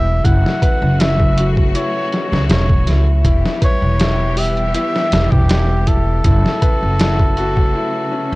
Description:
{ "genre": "trip hop", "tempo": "80 BPM", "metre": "4/4", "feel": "straight", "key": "unclear", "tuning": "A4 = 440 Hz", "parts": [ { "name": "trumpet with cup mute", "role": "melody", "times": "0.0-8.4 s", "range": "G4 to F#5", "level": "-22 LUFS", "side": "equal", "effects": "dub echo" }, { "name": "bright symphonic string section", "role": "sustained chords", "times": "0.0-8.4 s", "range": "C#3 to G4", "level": "-25 LUFS", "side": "equal", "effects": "vintage 12-bit sampler grit" }, { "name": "felt-muted upright piano", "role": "arpeggios", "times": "0.0-8.4 s", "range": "C#4 to E5", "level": "-23 LUFS", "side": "left 3 dB", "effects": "dub echo" }, { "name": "upright bass", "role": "bass", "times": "0.0-8.4 s", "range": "E1 to C#2", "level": "-16 LUFS", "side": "equal", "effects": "none" }, { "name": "trip hop sampler-style drum kit", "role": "drums", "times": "0.2-7.7 s", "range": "hi-hat, kick drum, snare drum", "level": "-16 LUFS", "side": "equal", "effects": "none" } ], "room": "small room ambience", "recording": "worn, warbling old tape, cassette tape, warbly pitch drift", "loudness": "-13 LUFS", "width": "side -21 dB against mid", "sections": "0.0-8.4 A section", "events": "break 7.7-8.4", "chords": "0.2 F#m; 3.2 Em; 6.2 F#m", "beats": "| 0.25 1.00 1.75 2.50 | 3.25 4.00 4.75 5.50 | 6.25 7.00 7.75" }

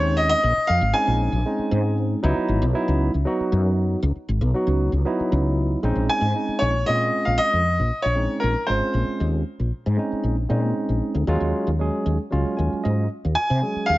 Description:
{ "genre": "electric jazz fusion", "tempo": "232 BPM (eighths)", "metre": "7/8", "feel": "straight", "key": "Bb minor", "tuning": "A4 = 443 Hz", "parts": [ { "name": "bright grand piano", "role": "melody", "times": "0.0-1.9, 6.1-9.2, 13.4-14.0 s", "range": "Bb4 to Ab5", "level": "-21 LUFS", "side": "equal", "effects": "none" }, { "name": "barky tine electric piano", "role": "accompaniment", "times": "0.0-14.0 s", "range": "Gb3 to Ab5", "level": "-25 LUFS", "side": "right 1 dB", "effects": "medium stereo tremolo" }, { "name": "woody fretless electric bass", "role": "bass", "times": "0.0-14.0 s", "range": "Ab1 to C3", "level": "-22 LUFS", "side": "equal", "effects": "ensemble chorus" } ], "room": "light reverb, studio ambience", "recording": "nothing above 7.6 kHz", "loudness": "-19 LUFS", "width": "side -18 dB against mid", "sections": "0.0-5.8 A section; 5.8-14.0 B section", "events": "tine electric piano fill 12.3-13.1", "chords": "0.0 Bbm11; 2.2 Dbm11; 5.8 Bbm11; 11.3 Ebm11", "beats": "0.17 | 0.42 0.68 0.94 1.19 1.45 1.71 1.97 | 2.23 2.48 2.74 3.00 3.26 3.51 3.77 | 4.03 4.29 4.55 4.80 5.06 5.32 5.58 | 5.84 6.10 6.36 6.61 6.87 7.13 7.39 | 7.65 7.91 8.17 8.43 8.69 8.95 9.21 | 9.46 9.72 9.98 10.24 10.50 10.76 11.02 | 11.28 11.54 11.80 12.06 12.32 12.58 12.84 | 13.10 13.36 13.62 13.88" }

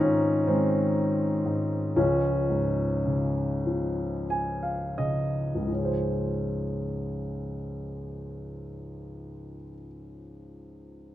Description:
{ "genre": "classical, lyrical solo piano", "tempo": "27-43 BPM (dotted quarters)", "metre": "6/8", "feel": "rubato", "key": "Db major", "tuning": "A4 = 440 Hz", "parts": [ { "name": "dark baby grand piano", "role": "solo", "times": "0.0-11.1 s", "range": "Db2 to Ab5", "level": "-26 LUFS", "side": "equal", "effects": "none" } ], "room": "light reverb", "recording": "close, detailed microphones", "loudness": "-25 LUFS", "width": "side -13 dB against mid", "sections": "0.0-5.7 A section; 5.7-10.1 B section", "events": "slowing down 0.0-5.7; grand piano fill 3.7-5.7", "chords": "0.0 Ab; 2.0 Db; 5.7 Dbmaj7", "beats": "0.48 | 1.96 3.66 | 5.70 7.91" }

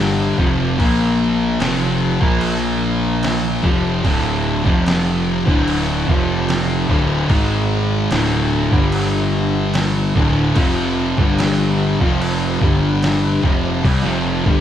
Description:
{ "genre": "stoner and doom metal", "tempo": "74 BPM", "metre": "4/4", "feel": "straight", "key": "unclear", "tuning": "A4 = 443 Hz", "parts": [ { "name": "raw garage guitar", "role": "riff", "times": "0.0-14.6 s", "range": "D2 to Bb3", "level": "-22 LUFS", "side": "equal", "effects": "overdrive" }, { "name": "thick fuzz guitar", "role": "riff", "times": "0.0-14.6 s", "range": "D2 to Bb3", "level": "-20 LUFS", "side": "left 6 dB", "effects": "distortion" }, { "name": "thick fuzz guitar", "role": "riff", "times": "0.0-14.6 s", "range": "D2 to Bb3", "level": "-22 LUFS", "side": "right 7 dB", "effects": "distortion" }, { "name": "growling fingered electric bass", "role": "bass", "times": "0.0-14.6 s", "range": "D1 to C2", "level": "-24 LUFS", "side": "equal", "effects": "overdrive" }, { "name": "trip hop sampler-style drum kit", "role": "drums", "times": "0.4-14.6 s", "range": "crash cymbal, kick drum, snare drum", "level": "-20 LUFS", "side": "equal", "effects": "none" } ], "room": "moderate large studio reverb, RT60 0.8 s", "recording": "band playing live in one room", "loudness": "-15 LUFS", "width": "side -10 dB against mid", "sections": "0.0-14.6 A section", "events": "none", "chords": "0.4 F5; 0.8 Bb5; 1.6 F5; 2.2 Bb5; 3.6 F5; 4.0 D5; 4.7 F5; 5.5 D5; 6.1 F5; 6.9 D5; 7.3 G#5; 8.1 D5; 8.7 G5; 10.2 D5; 10.6 F5; 11.2 G5; 12.0 F5; 12.6 G5; 13.4 F5", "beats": "| 0.78 1.59 2.41 3.22 | 4.04 4.85 5.67 6.49 | 7.30 8.12 8.94 9.75 | 10.57 11.39 12.20 13.02 | 13.84" }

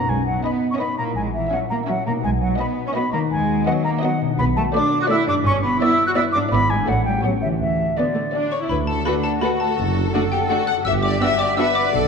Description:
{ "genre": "cinematic", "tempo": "167 BPM", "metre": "3/4", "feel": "straight", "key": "B major, D major from 4.4 s", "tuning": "A4 = 440 Hz", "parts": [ { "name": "concert flute", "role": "second line", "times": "0.0-8.5 s", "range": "D5 to F#6", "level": "-23 LUFS", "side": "equal", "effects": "none" }, { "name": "concert harp", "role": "arpeggios", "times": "0.0-12.1 s", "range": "F#2 to C#6", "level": "-24 LUFS", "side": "left 7 dB", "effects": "none" }, { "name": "rich studio cello section", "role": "bass", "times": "0.1-12.1 s", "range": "D3 to B4", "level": "-24 LUFS", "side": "right 5 dB", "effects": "none" }, { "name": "warm studio double bass section", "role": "bass", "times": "0.1-12.1 s", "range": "F#1 to D#2", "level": "-26 LUFS", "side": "right 4 dB", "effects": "none" }, { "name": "warm studio violin section", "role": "melody", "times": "0.4-11.7 s", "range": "F#4 to E5", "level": "-30 LUFS", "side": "left 4 dB", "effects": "none" }, { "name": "rich studio violin section", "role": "second line", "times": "0.4-12.1 s", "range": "D#4 to F#5", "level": "-27 LUFS", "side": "left 4 dB", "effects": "none" }, { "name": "rich studio viola section", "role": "accompaniment", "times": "0.4-11.7 s", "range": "A3 to F#4", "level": "-28 LUFS", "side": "right 1 dB", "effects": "none" }, { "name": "xylophone with plastic mallets", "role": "melody", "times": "8.5-12.1 s", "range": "F#5 to F#6", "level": "-26 LUFS", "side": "left 4 dB", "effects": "none" }, { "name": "dark tuba", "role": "bass", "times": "8.7-12.1 s", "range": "F#1 to D2", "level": "-29 LUFS", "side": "right 6 dB", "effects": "none" } ], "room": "wet scoring stage reverb, RT60 1.7 s", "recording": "dark, warm production", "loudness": "-18 LUFS", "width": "side -5 dB against mid", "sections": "0.1-8.7 A section; 8.7-12.1 B section", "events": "none", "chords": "0.1 B; 1.2 F#7/A#; 2.2 B; 3.3 B/D#; 4.4 Bm7; 5.5 Em7/G; 6.5 E7/G#; 6.9 D/A; 7.2 A9; 7.6 D; 9.8 D/F#; 10.9 Gmaj7", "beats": "| 0.09 0.45 0.81 | 1.17 1.52 1.88 | 2.24 2.60 2.96 | 3.32 3.67 4.03 | 4.39 4.74 5.10 | 5.46 5.81 6.17 | 6.52 6.88 7.24 | 7.61 7.97 8.34 | 8.70 9.06 9.42 | 9.78 10.14 10.50 | 10.86 11.22 11.57 | 11.93" }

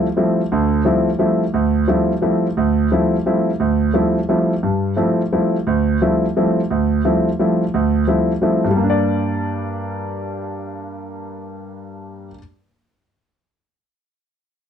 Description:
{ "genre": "jazz", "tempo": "175 BPM", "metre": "3/4", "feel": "swing 65% on 8ths", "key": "G dorian", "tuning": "A4 = 438 Hz", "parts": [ { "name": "warm concert grand piano", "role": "solo", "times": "0.0-12.4 s", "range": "D2 to D5", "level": "-16 LUFS", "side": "equal", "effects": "none" } ], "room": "light reverb", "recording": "dark, warm production", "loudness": "-16 LUFS", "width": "side -8 dB against mid", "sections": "0.0-4.6 A section; 4.6-8.8 B section; 8.8-10.8 C section", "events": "none", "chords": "0.0 G13sus4; 8.8 Gm", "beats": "0.16 | 0.51 0.85 1.20 | 1.54 1.88 2.23 | 2.57 2.91 3.26 | 3.60 3.94 4.29 | 4.63 4.97 5.32 | 5.66 6.00 6.35 | 6.69 7.04 7.38 | 7.73 8.07 8.41 | 8.76 9.10 9.45 | 9.79 10.14 10.48" }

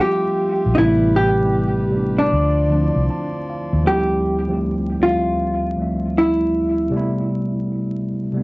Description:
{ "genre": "hip hop", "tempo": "78 BPM", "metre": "4/4", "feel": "swing 65% on 16ths", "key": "D dorian", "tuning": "A4 = 438 Hz", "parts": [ { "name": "hollow-body jazz guitar", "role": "melody", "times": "0.0-8.4 s", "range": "D4 to G4", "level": "-19 LUFS", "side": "equal", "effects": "low-pass filter, analog delay" }, { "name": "mellow tine electric piano", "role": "accompaniment", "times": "0.0-8.4 s", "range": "D2 to A5", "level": "-21 LUFS", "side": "equal", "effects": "medium stereo tremolo, low-pass filter, cassette tape" }, { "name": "hand-pumped harmonium", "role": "sustained chords", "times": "0.0-3.9 s", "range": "F3 to C6", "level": "-28 LUFS", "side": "equal", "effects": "low-pass filter, cassette tape" }, { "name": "vintage muted fingered electric bass", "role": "bass", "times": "0.7-3.8 s", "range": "A1 to Eb2", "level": "-19 LUFS", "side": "equal", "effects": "none" } ], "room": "light reverb", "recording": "home recording on cassette, vinyl crackle, nothing above 7.8 kHz", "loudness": "-16 LUFS", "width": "side -23 dB against mid", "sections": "0.0-3.9 A section; 3.9-8.4 B section", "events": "none", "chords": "0.0 Dm11; 0.8 Am9; 2.3 Dm9; 3.9 Dm11; 6.9 Am9", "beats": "0.01 | 0.78 1.55 2.32 3.09 | 3.86 4.63 5.40 6.17 | 6.94 7.71" }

